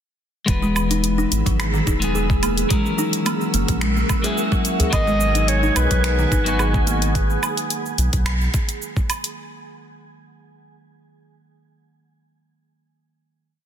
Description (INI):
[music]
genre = organic downtempo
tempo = 108 BPM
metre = 4/4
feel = swing 53% on 16ths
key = G# minor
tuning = A4 = 440 Hz
[part]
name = clean electric guitar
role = accompaniment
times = 0.5-7.1 s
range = E3 to B4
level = -26 LUFS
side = left 4 dB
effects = warbly pitch drift, sidechain pumping, digital delay
[part]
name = ethereal airy pad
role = sustained chords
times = 1.2-7.1 s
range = G#4 to E6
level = -29 LUFS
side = right 1 dB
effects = ensemble chorus, built-in reverb, phaser, sidechain pumping
[part]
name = warm sub bass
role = bass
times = 0.5-8.5 s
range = E1 to B1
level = -21 LUFS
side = equal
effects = none
[part]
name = deep house drum kit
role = drums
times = 0.5-9.3 s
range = cabasa, finger snaps, hi-hat, woodblock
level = -26 LUFS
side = right 1 dB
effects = soft clipping on snare
[part]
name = electronic kick drum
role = drums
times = 0.5-9.1 s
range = none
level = -22 LUFS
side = equal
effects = overdrive
[part]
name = kalimba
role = arpeggios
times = 0.6-7.0 s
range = D#3 to G#4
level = -25 LUFS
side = equal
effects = digital delay
[part]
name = udu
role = percussion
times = 2.3-6.8 s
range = none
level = -24 LUFS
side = equal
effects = none
[part]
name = warm clarinet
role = melody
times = 4.9-6.9 s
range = B4 to D#5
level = -24 LUFS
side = equal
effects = digital delay
[part]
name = wind-like tuned noise texture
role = texture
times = 5.1-7.2 s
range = G#5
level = -31 LUFS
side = right 6 dB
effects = built-in reverb
[sound]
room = light reverb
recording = dense, heavily limited modern master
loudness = -17 LUFS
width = side -9 dB against mid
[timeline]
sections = 0.5-9.4 groove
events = none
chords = 0.5 E; 2.7 F#7; 4.9 G#m7